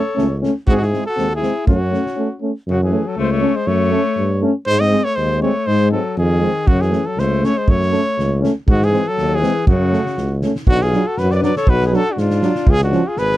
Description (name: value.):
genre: balkan folk, Balkan brass band.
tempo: 120 BPM.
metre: 2/4.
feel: swing 54% on 16ths.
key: F# dorian sharp4.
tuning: A4 = 440 Hz.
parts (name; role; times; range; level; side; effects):
warm trumpet; melody; 0.0-13.4 s; E#4 to D#5; -20 LUFS; right 1 dB; none.
warm alto saxophone; second line; 0.0-13.4 s; C#3 to B4; -24 LUFS; left 8 dB; none.
warm euphonium; accompaniment; 0.0-13.0 s; E#3 to A3; -22 LUFS; right 6 dB; none.
mellow French horn; accompaniment; 0.2-13.0 s; B#3 to D4; -22 LUFS; left 4 dB; none.
warm tuba; bass; 0.2-13.4 s; G#1 to G#2; -18 LUFS; equal; none.
loose indie drum kit; percussion; 0.2-2.1, 6.7-13.4 s; kick drum, snare drum; -17 LUFS; right 1 dB; none.
room: little or no reverb.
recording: none.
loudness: -14 LUFS.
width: side -15 dB against mid.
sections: 0.0-2.7 A section; 2.7-10.7 A section; 10.7-13.4 B section.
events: break 2.2-2.7.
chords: 0.0 F#m (rootless); 0.7 G#; 1.7 F#m; 4.7 G#; 6.7 F#m; 8.7 G#; 9.7 F#m; 10.7 Bm; 12.7 C#.